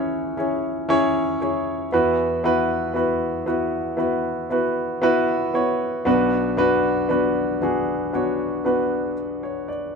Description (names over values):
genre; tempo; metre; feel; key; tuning
pop; 58 BPM; 4/4; straight; unclear; A4 = 440 Hz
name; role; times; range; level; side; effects
warm grand piano; solo; 0.0-10.0 s; B1 to D5; -20 LUFS; equal; none
room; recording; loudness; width
moderate studio reverb, RT60 0.7 s; band playing live in one room; -20 LUFS; side -5 dB against mid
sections
0.0-10.0 A section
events
none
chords
0.0 C#m7; 1.9 Esus2; 6.1 Bm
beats
0.89 | 1.92 2.96 3.99 5.03 | 6.06 7.09 8.13 9.16